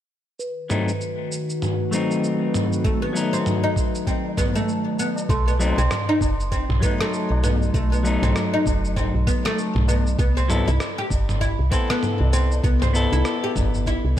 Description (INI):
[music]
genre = organic downtempo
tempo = 98 BPM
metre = 4/4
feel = swing 59% on 16ths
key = unclear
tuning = A4 = 439 Hz
[part]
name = airy breathy pad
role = sustained chords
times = 0.9-5.3 s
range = D#3 to B4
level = -29 LUFS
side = equal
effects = chorus, sidechain pumping
[part]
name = dusty soul sampler-style drum kit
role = drums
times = 0.4-14.0 s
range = cabasa, rim click, toms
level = -28 LUFS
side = right 1 dB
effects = none
[part]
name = quartz singing bowl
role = texture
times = 0.4-14.2 s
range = B4 to C6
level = -36 LUFS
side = right 2 dB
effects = none
[part]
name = clean electric guitar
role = accompaniment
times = 0.7-14.2 s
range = F#3 to A4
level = -26 LUFS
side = left 3 dB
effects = sidechain pumping, ping-pong delay
[part]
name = oud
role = arpeggios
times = 2.8-14.0 s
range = A3 to G4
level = -26 LUFS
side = equal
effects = ping-pong delay
[part]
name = electronic kick drum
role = drums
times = 2.8-14.2 s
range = none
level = -24 LUFS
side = equal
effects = none
[part]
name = tabla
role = percussion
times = 3.2-13.7 s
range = none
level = -36 LUFS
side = left 2 dB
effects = none
[part]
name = woody FM bass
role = bass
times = 5.3-14.2 s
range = F#1 to C2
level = -21 LUFS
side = equal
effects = none
[sound]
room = light reverb, digital ambience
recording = dark, warm production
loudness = -19 LUFS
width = side -11 dB against mid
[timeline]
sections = 0.4-5.3 A section; 5.3-14.2 B section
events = filter sweep on analog synth pad 0.4-5.3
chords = 0.4 B7b9; 10.2 Cmaj7